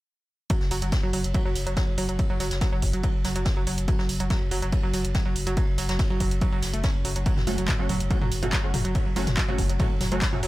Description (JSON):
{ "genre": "driving peak-time techno", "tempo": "142 BPM", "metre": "4/4", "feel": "straight", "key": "F# minor", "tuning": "A4 = 440 Hz", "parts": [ { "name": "analog pluck", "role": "riff", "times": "0.5-10.5 s", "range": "F#3 to C#4", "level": "-30 LUFS", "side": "right 2 dB", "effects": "chorus, sidechain pumping, analog delay" }, { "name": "electronic kick drum", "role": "drums", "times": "0.5-10.3 s", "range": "none", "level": "-26 LUFS", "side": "equal", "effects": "none" }, { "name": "punchy analog drum machine", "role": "drums", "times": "0.5-10.5 s", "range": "handclaps, hi-hat, toms", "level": "-31 LUFS", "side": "equal", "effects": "sidechain pumping on hats, sidechain pumping on toms" }, { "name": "vintage brush drum kit", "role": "drums", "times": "0.5-10.5 s", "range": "ride cymbal, snare drum", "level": "-38 LUFS", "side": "equal", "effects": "high-pass filter on cymbals, high-pass filter on snare, high-pass filter on room" }, { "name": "saturated sub bass", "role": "bass", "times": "0.6-10.5 s", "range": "F#1", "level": "-29 LUFS", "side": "equal", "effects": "tube saturation, sidechain pumping, low-pass filter" }, { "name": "rave stab", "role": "stabs", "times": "7.5-10.4 s", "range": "A3 to F#4", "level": "-32 LUFS", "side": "right 1 dB", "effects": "chorus, built-in reverb, sidechain pumping, analog delay" } ], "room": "little or no reverb", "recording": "echo-heavy mix", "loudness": "-22 LUFS", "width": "side -18 dB against mid", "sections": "0.5-10.5 A section", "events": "none", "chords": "0.5 F#m" }